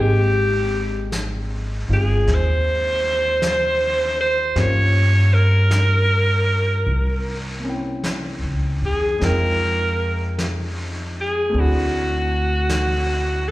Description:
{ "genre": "jazz ballad", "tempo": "52 BPM", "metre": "4/4", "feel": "swing 66% on 8ths", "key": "unclear", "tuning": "A4 = 440 Hz", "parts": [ { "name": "breathy alto saxophone", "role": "melody", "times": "0.0-13.5 s", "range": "F#4 to Db5", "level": "-20 LUFS", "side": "equal", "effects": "slapback echo" }, { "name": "warm grand piano", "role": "accompaniment", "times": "0.0-13.5 s", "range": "G3 to G5", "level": "-30 LUFS", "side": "left 1 dB", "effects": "slapback echo" }, { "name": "upright bass", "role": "bass", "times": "0.0-13.5 s", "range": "G1 to G2", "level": "-20 LUFS", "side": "equal", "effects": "none" }, { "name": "vintage brush drum kit", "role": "drums", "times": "1.1-13.5 s", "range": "brushed snare drum, hi-hat, snare drum", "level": "-30 LUFS", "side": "equal", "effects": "slapback echo" } ], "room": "light reverb", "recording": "live gig heard through the venue's PA, recital hall reverb", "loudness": "-17 LUFS", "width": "side -17 dB against mid", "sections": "0.0-13.5 A section", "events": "none", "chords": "0.0 Abmaj9; 4.6 Gm7b5; 6.9 C7b9; 9.2 Fm9; 11.5 D7" }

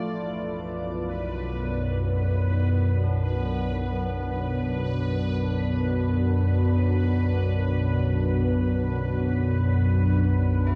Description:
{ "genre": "dark ambient drone", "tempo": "free time", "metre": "none", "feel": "none", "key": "B minor", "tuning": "A4 = 440 Hz", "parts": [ { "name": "deep dark ambient pad", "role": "sustained chords", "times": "0.0-10.8 s", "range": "B3 to D5", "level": "-31 LUFS", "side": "equal", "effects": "chorus, built-in reverb, shimmer reverb" }, { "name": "organ-like drone", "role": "drone", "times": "0.6-10.8 s", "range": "B1 to F#2", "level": "-26 LUFS", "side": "equal", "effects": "ensemble chorus, built-in reverb" }, { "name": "bubbling stepped-filter texture", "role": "texture", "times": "0.0-10.8 s", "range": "B4", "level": "-39 LUFS", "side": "equal", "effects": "chorus, built-in reverb, shimmer reverb" }, { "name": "tubular bells", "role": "arpeggios", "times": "3.0-10.8 s", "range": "D4 to E4", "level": "-52 LUFS", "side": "equal", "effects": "none" } ], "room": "wet huge ambient reverb, RT60 7.9 s", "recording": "dark, warm production", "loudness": "-25 LUFS", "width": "mono", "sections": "0.0-10.8 A section", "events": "none", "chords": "0.0 Bm" }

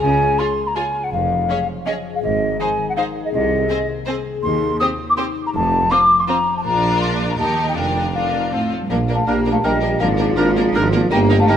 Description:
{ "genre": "cinematic", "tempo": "162 BPM", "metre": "3/4", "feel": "straight", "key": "Db major, Bb major from 4.4 s", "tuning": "A4 = 444 Hz", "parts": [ { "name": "mellow hollow silver concert flute", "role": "second line", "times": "0.0-11.5 s", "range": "D5 to Eb6", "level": "-20 LUFS", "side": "left 1 dB", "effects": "none" }, { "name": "concert harp", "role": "arpeggios", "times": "0.0-11.6 s", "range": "F2 to D5", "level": "-25 LUFS", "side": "left 8 dB", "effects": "none" }, { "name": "rich studio cello section", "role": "bass", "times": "0.0-11.6 s", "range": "Eb2 to Bb3", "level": "-26 LUFS", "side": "right 2 dB", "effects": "none" }, { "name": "rich studio double bass section", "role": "bass", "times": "0.0-11.6 s", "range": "F1 to Eb2", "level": "-25 LUFS", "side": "right 3 dB", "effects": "none" }, { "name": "warm tuba", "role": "bass", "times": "0.0-11.6 s", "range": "F1 to Eb2", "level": "-25 LUFS", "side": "right 4 dB", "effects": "none" }, { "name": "clear studio violin section", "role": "melody", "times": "0.4-11.6 s", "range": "A4 to Db5", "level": "-31 LUFS", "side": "left 2 dB", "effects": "none" }, { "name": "rich studio violin section", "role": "second line", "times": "0.4-11.6 s", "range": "D4 to Ab4", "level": "-29 LUFS", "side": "left 1 dB", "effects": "none" }, { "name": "clear studio viola section", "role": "accompaniment", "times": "0.4-11.6 s", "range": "Bb3 to F4", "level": "-28 LUFS", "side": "right 1 dB", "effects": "none" }, { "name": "celesta", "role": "melody", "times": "8.9-11.6 s", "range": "F5 to Bb5", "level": "-24 LUFS", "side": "left 3 dB", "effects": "none" }, { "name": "clear oboe", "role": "second line", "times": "9.3-11.6 s", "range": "Bb4", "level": "-26 LUFS", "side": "right 2 dB", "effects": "none" }, { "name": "warm clarinet", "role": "second line", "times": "9.3-11.6 s", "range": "D4 to Eb4", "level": "-27 LUFS", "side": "left 1 dB", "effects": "none" }, { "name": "warm French horn section", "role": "sustained chords", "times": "9.3-11.6 s", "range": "F4 to G4", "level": "-22 LUFS", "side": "left 1 dB", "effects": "none" } ], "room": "moderate scoring stage reverb, RT60 1.9 s", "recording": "none", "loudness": "-16 LUFS", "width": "side -9 dB against mid", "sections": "0.0-8.9 A section; 8.9-11.6 B section", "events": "none", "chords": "0.0 Db; 1.1 Db/F; 2.2 Ab5; 3.3 Ab/C; 4.4 Cm/Eb; 5.5 F; 6.6 Bb; 7.4 Eb; 7.8 Bb/F; 8.5 F; 8.9 Bb; 10.0 Bb7/Ab" }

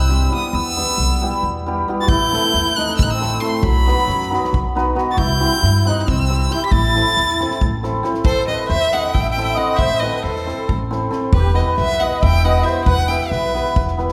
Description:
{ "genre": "balkan folk, Balkan wedding band", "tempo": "272 BPM (eighths)", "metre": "7/8", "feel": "straight", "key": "A dorian sharp4", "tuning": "A4 = 442 Hz", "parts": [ { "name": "bright violin", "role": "melody", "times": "0.0-13.8 s", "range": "B4 to B6", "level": "-23 LUFS", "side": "equal", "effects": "none" }, { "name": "musette accordion", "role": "second line", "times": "0.0-13.8 s", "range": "F#3 to E5", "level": "-26 LUFS", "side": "equal", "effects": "none" }, { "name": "hammered dulcimer", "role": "accompaniment", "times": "0.0-14.1 s", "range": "G3 to C5", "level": "-25 LUFS", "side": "equal", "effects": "none" }, { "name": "upright bass", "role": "bass", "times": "0.0-14.1 s", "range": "E1 to G2", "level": "-23 LUFS", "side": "equal", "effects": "none" }, { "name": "natural country drum kit", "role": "percussion", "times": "2.1-14.1 s", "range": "kick drum, snare drum", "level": "-24 LUFS", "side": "equal", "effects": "none" } ], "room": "wet concert hall reverb, RT60 1.9 s", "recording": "recorded in a church or concert hall", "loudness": "-18 LUFS", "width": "mono", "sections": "0.0-8.3 A section; 8.3-14.1 B section", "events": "none", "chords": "0.0 C; 0.5 Em; 2.1 Am; 3.6 B; 5.2 C; 6.7 Am; 11.3 Em" }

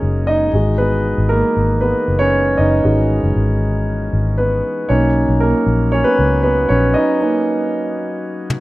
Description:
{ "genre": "piano-driven pop", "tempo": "117 BPM", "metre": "4/4", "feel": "straight", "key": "unclear", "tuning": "A4 = 440 Hz", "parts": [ { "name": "warm concert grand piano", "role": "accompaniment", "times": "0.0-8.6 s", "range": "G#3 to D#5", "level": "-16 LUFS", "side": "right 1 dB", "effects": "none" }, { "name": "mellow tonewheel organ", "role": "sustained chords", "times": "0.0-8.6 s", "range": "C#3 to G#4", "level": "-26 LUFS", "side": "left 2 dB", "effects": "slow rotary speaker" }, { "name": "vintage muted fingered electric bass", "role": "bass", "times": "0.0-6.9 s", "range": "F#1 to C#2", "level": "-17 LUFS", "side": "equal", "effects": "none" }, { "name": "toms", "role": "drums", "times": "8.5-8.6 s", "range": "none", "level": "-18 LUFS", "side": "left 1 dB", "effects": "none" } ], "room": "light reverb, small room ambience", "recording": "rough home demo mix", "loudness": "-14 LUFS", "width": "side -18 dB against mid", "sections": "0.0-8.6 A section", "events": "grand piano solo 0.0-8.6; break 7.0-8.6", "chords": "0.0 F#add9; 0.5 Emaj7; 4.9 Bmaj7" }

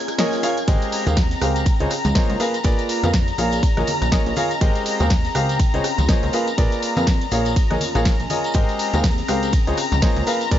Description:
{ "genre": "piano house", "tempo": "122 BPM", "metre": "4/4", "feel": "swing 58% on 16ths", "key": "Ab major", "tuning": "A4 = 438 Hz", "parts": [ { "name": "analog string pad", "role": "sustained chords", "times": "0.0-10.6 s", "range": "Bb5 to Ab6", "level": "-27 LUFS", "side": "left 3 dB", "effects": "ensemble chorus, sidechain pumping" }, { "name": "warbly tape-like pad", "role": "texture", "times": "0.0-10.6 s", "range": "C4 to Bb5", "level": "-30 LUFS", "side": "left 1 dB", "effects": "chorus, built-in reverb, sidechain pumping" }, { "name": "punchy analog drum machine", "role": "drums", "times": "0.1-10.6 s", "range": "hi-hat, ride cymbal, rim click, snare drum, tambourine", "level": "-27 LUFS", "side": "equal", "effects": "none" }, { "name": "warm grand piano", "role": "riff", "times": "0.2-10.6 s", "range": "Db3 to F5", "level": "-23 LUFS", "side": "equal", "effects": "sidechain pumping, ping-pong delay" }, { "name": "tight metal drum kit", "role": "drums", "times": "0.2-10.6 s", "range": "hi-hat, snare drum", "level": "-40 LUFS", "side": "right 4 dB", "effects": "none" }, { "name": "plucky analog bass", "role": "bass", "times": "0.7-10.6 s", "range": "Ab1 to F2", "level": "-22 LUFS", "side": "equal", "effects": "sidechain pumping" }, { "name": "electronic kick drum", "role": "drums", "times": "0.7-10.6 s", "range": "none", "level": "-19 LUFS", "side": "equal", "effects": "none" }, { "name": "tambourine and congas", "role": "percussion", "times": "0.7-10.6 s", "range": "none", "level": "-32 LUFS", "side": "right 2 dB", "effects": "none" } ], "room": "small room ambience", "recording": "nothing above 7.6 kHz", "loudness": "-17 LUFS", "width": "side -11 dB against mid", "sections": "0.0-10.6 A section", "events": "break 0.0-0.7", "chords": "0.0 Eb9sus4/Bb; 0.7 Abmaj9; 1.7 Dbmaj9; 2.4 Bb7b9; 3.4 Eb9sus4/Bb; 4.6 Abmaj9; 5.6 Dbmaj9; 6.3 Bb7b9; 7.3 Eb9sus4/Bb; 8.5 Abmaj9; 9.5 Dbmaj9" }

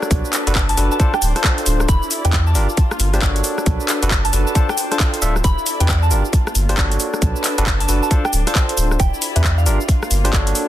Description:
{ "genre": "UK garage, two-step garage", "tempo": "135 BPM", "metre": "4/4", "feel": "swing 63% on 16ths", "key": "unclear", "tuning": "A4 = 440 Hz", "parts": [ { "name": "ethereal airy pad", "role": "sustained chords", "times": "0.0-10.7 s", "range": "D4 to A4", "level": "-31 LUFS", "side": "equal", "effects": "ensemble chorus, built-in reverb, sidechain pumping" }, { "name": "barky tine electric piano", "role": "stabs", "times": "0.0-10.7 s", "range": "D4 to E5", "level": "-25 LUFS", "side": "equal", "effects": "medium stereo tremolo, tape echo" }, { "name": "garage drum kit", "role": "drums", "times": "0.0-10.7 s", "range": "cabasa, handclaps, hi-hat, rim click", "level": "-21 LUFS", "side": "left 1 dB", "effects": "none" }, { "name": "muted chamber string section", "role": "texture", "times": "0.0-10.7 s", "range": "Bb3 to A5", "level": "-29 LUFS", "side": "left 1 dB", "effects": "sidechain pumping" }, { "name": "soft dub sub bass", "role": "bass", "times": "0.1-10.5 s", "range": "D1 to E2", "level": "-18 LUFS", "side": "equal", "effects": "none" }, { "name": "electronic kick drum", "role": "drums", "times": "0.1-10.4 s", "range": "none", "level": "-17 LUFS", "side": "equal", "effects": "none" }, { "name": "soft synth bell", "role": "melody", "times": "0.7-9.8 s", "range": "E5 to B5", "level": "-26 LUFS", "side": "right 1 dB", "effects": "chorus, phaser, tape echo" } ], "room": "digital ambience", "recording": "dense, heavily limited modern master", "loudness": "-15 LUFS", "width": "side -13 dB against mid", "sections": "0.0-10.7 A section", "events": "none", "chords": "0.0 Bm7; 1.0 Dm7; 1.9 Em7; 2.6 Gm7; 3.4 Bm7; 4.6 Dm7; 5.4 Em7; 6.1 Gm7; 7.0 Bm7; 8.1 Dm7; 9.0 Em7; 9.7 Gm7" }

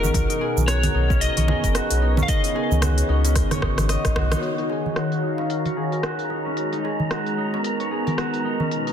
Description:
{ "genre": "organic downtempo", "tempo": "112 BPM", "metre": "4/4", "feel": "swing 58% on 16ths", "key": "Eb minor", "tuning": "A4 = 440 Hz", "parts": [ { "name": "electric slide guitar", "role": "melody", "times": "0.0-3.9 s", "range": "Bb4 to F5", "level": "-27 LUFS", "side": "left 2 dB", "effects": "ping-pong delay" }, { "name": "warm analog pad", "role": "sustained chords", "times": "0.0-8.9 s", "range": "B2 to F5", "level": "-27 LUFS", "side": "equal", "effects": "chorus, sidechain pumping" }, { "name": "concert harp", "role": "arpeggios", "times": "0.0-8.9 s", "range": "Db4 to Eb5", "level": "-27 LUFS", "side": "left 1 dB", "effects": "low-pass filter, ping-pong delay" }, { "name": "warm sub bass", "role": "bass", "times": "0.0-4.4 s", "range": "F#1 to Db2", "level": "-21 LUFS", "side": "equal", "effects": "none" }, { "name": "afro-pop drum kit", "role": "drums", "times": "0.0-8.9 s", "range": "congas, hi-hat, rim click, shaker", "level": "-28 LUFS", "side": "right 2 dB", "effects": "low-pass filter on perc, low-pass filter on hats, low-pass filter on snare" }, { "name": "darbuka", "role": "percussion", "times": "0.0-8.7 s", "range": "none", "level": "-30 LUFS", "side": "right 1 dB", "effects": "none" }, { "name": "electronic kick drum", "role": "drums", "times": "0.1-4.1 s", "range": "none", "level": "-24 LUFS", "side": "equal", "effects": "none" }, { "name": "wind-like tuned noise texture", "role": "texture", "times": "5.2-8.9 s", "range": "Bb5", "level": "-32 LUFS", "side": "right 1 dB", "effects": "built-in reverb" } ], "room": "light reverb, digital ambience", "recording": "dense, heavily limited modern master", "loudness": "-20 LUFS", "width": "side -8 dB against mid", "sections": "0.0-4.4 A section; 4.4-8.9 B section", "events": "drum fill 3.4-4.4; band accent 4.3; filter sweep on harp 4.4-8.9", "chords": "0.1 Bmaj9; 2.3 Db9sus4; 4.4 Ebm7; 6.6 Abm7" }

